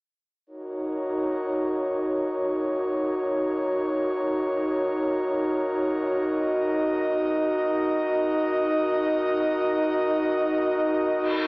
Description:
drum and bass; free time; Eb minor; A4 = 440 Hz
airy breathy pad; sustained chords; 0.5-11.5 s; Eb4 to Eb5; -23 LUFS; equal; chorus
reverse cymbal; sound effects; 11.2-11.5 s; -28 LUFS; left 1 dB
wet plate reverb, RT60 3.6 s; heavily compressed radio sound, AM radio sound; -22 LUFS; side -27 dB against mid
0.5-11.5 A section
reverse cymbal 11.2
0.5 Ebm7

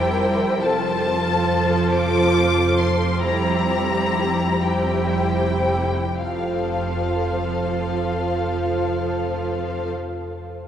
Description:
classical, slow romantic movement for string orchestra; 36-54 BPM (dotted quarters); 6/8; rubato; F major; A4 = 440 Hz
rich symphonic violin section; melody; 0.0-9.9 s; F5 to D6; -26 LUFS; left 4 dB
warm symphonic violin section; second line; 0.0-9.9 s; G4 to C5; -24 LUFS; left 2 dB
clear symphonic viola section; accompaniment; 0.0-9.9 s; F3 to F4; -24 LUFS; right 3 dB
rich symphonic cello section; bass; 0.0-9.9 s; F2; -27 LUFS; right 3 dB
rich symphonic double bass section; bass; 0.0-9.9 s; F1; -28 LUFS; right 1 dB
wet cathedral reverb, RT60 5.8 s; recorded in a church or concert hall; -19 LUFS; side -9 dB against mid
0.0-6.2 A section; 6.2-9.2 B section
slowing down 0.0-6.2
0.0 C7/F; 0.6 F; 3.2 C7/F; 6.2 F

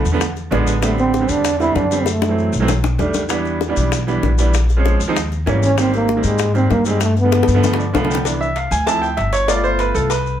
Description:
Afro-Cuban jazz; 194 BPM; 4/4; straight; A4 = 439 Hz
clear baby grand piano; accompaniment; 0.0-10.4 s; D3 to A5; -19 LUFS; right 3 dB
upright bass; bass; 0.1-10.4 s; G1 to Ab2; -19 LUFS; left 1 dB
maracas; percussion; 0.1-10.4 s; -30 LUFS; left 8 dB
bongos and cowbell; percussion; 0.2-10.3 s; -24 LUFS; left 7 dB
breathy trombone; melody; 0.8-2.7, 5.6-7.8 s; Ab3 to E4; -18 LUFS; right 1 dB
moderate club reverb, RT60 0.6 s; heard from further back in the room; -15 LUFS; side -10 dB against mid
0.0-8.3 A section; 8.3-10.4 B section
grand piano fill 0.4-0.8, 7.6-8.3; drum fill 2.1-3.3, 7.3-8.3; grand piano solo 8.3-10.4
0.2 E7b9; 0.8 Am11; 2.1 F#m7b5; 2.7 B7alt; 3.3 Em7; 4.5 Bbm9; 5.2 Eb7b9; 5.8 Abmaj7; 7.0 G9; 8.3 Cmaj7; 8.9 Dm7; 9.5 G9

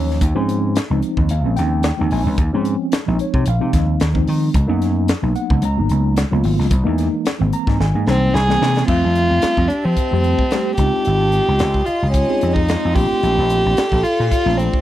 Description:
electric jazz fusion; 111 BPM; 4/4; swing 55% on 16ths; F major from 8.9 s; A4 = 436 Hz
mellow tine electric piano; accompaniment; 0.0-14.8 s; E3 to Bb5; -22 LUFS; equal; medium stereo tremolo
vintage slap bass; bass; 0.0-14.7 s; Ab1 to F3; -18 LUFS; equal
crisp fusion drum kit; drums; 0.1-14.8 s; crash cymbal, hi-hat, kick drum, snare drum; -21 LUFS; equal
dark violin; melody; 8.1-14.8 s; C4 to G#4; -18 LUFS; equal
evolving wavetable pad; sustained chords; 8.9-14.8 s; F4 to C6; -27 LUFS; equal; phaser, built-in reverb
little or no reverb; -15 LUFS; side -13 dB against mid
0.0-8.9 A section; 8.9-14.8 B section
drum fill 7.8-8.9
0.2 Eb13sus4; 4.5 Db13sus4; 6.7 C7alt; 8.9 Fmaj9; 10.8 Dbmaj9; 13.0 Bbmaj9

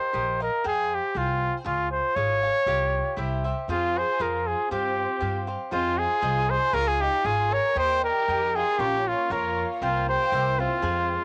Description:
mexican folk, mariachi; 118 BPM; 2/4; straight; F minor; A4 = 440 Hz
bright trumpet; melody; 0.0-11.2 s; F4 to Db5; -26 LUFS; equal; cassette tape
cavaquinho; accompaniment; 0.0-11.2 s; E4 to Ab5; -36 LUFS; equal; cassette tape
upright bass; bass; 0.1-11.2 s; Ab1 to G2; -34 LUFS; equal
warm symphonic violin section; second line; 3.7-11.2 s; C4 to Bb4; -37 LUFS; equal; cassette tape
warm studio violin section; sustained chords; 7.8-11.2 s; G3 to Db5; -39 LUFS; equal; cassette tape
moderate booth ambience, RT60 0.2 s; home recording on cassette; -25 LUFS; mono
0.0-11.2 A section
0.0 Ebadd9; 0.6 Fmadd9; 1.7 Db; 2.7 Csus4; 3.2 C; 3.7 Fm; 4.7 Csus4/G; 5.7 Fm7; 6.7 Db; 7.8 Eb; 8.8 Bbm; 9.8 C7sus4; 10.3 C7

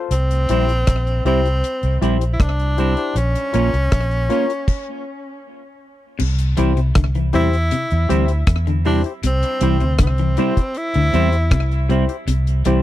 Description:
roots reggae; 79 BPM; 4/4; straight; A4 = 440 Hz
percussive organ stab; stabs; 0.0-12.8 s; E4 to Db5; -22 LUFS; left 9 dB; chorus
breathy tenor saxophone; melody; 0.1-11.9 s; C4 to E4; -24 LUFS; equal; tape echo
vintage muted fingered electric bass; bass; 0.1-12.8 s; Bb1 to E2; -18 LUFS; equal
deep reggae drum kit; drums; 0.1-12.8 s; crash cymbal, hi-hat, kick drum, rim click; -19 LUFS; equal; slapback echo
semi-hollow electric guitar; accompaniment; 0.5-12.8 s; G3 to F4; -25 LUFS; right 8 dB; spring reverb, tape echo
clean electric guitar; arpeggios; 6.2-12.8 s; C3 to E3; -25 LUFS; left 6 dB; tremolo
little or no reverb; dry, close 1970s-style studio recording; -16 LUFS; side -14 dB against mid
0.0-6.2 A section; 6.2-12.8 B section
stop 4.7-6.2
0.1 C; 3.2 Bbm; 6.2 C

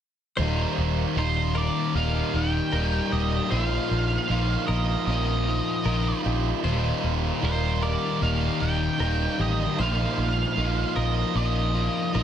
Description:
rock; 76 BPM; 4/4; straight; Eb major; A4 = 439 Hz
direct-recorded clean electric guitar; arpeggios; 0.4-12.2 s; G4 to C5; -36 LUFS; left 4 dB; lush chorus, analog delay
biting overdriven guitar; riff; 0.4-12.2 s; Eb2 to F4; -30 LUFS; right 14 dB; reverse reverb
overdriven semi-hollow guitar; riff; 0.4-12.2 s; Eb2 to F4; -28 LUFS; left 7 dB; lush chorus
vintage muted fingered electric bass; bass; 0.4-12.2 s; Eb1 to Bb1; -26 LUFS; equal
octave-fuzz lead guitar; melody; 1.2-12.2 s; C5 to G5; -30 LUFS; right 3 dB; distortion, analog delay
digital ambience; dense, heavily limited modern master; -22 LUFS; side -9 dB against mid
0.4-12.2 A section
0.4 Eb; 3.5 Bbsus4; 6.6 Eb; 9.8 Bbsus4

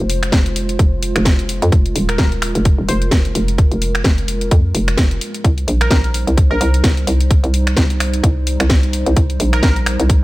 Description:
bass house; 129 BPM; 4/4; swing 57% on 16ths; F minor; A4 = 443 Hz
dark analog pad; sustained chords; 0.0-10.2 s; G3 to C5; -25 LUFS; right 1 dB; chorus, sidechain pumping
hollow knocking FM bass; bass; 0.0-10.2 s; Eb1 to F2; -17 LUFS; equal; tube saturation, sidechain pumping
garage drum kit; drums; 0.1-10.2 s; finger snaps, hi-hat, snare drum; -20 LUFS; equal
electronic kick drum; drums; 0.3-10.2 s; -14 LUFS; equal
glassy wavetable pluck; melody; 2.1-6.7, 9.5-9.7 s; Bb4 to C5; -25 LUFS; equal; chorus, tape echo
digital ambience; -13 LUFS; side -19 dB against mid
0.0-10.2 A section
0.0 Fm; 5.4 Cm

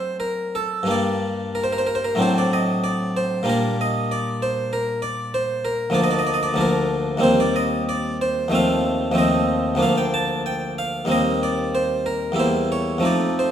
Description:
classical, baroque-style suite movement for harpsichord; 94 BPM; 4/4; uneven beats, rubato; G minor, Bb major from 6.0 s; A4 = 440 Hz
harpsichord; solo; 0.0-13.5 s; D2 to A5; -19 LUFS; equal
wet recital hall reverb, RT60 1.4 s; -19 LUFS; side -9 dB against mid
0.0-13.5 A section
0.0 D7/F#; 0.9 Gm; 2.2 D7/A; 3.5 Gm/Bb; 6.0 Bb/D; 7.2 Cm7/Eb; 8.5 F7/Eb; 9.8 Bb/D; 11.1 Cm7/Eb; 12.4 Edim7

